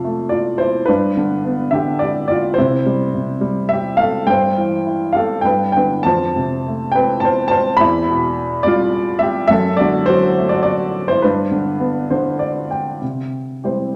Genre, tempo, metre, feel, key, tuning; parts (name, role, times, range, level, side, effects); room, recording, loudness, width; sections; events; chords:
classical, lyrical solo piano; 95-108 BPM; 3/4; rubato; C major; A4 = 443 Hz
warm upright piano; solo; 0.0-14.0 s; E2 to B5; -17 LUFS; equal
wet recital hall reverb, RT60 1.5 s; -17 LUFS; mono
0.0-13.0 A section
upright piano fill 11.8-13.0
0.0 F; 0.9 G; 2.6 C; 4.3 C/G; 5.4 G; 6.0 F; 7.8 Em; 9.5 D/F#; 11.2 G; 13.0 C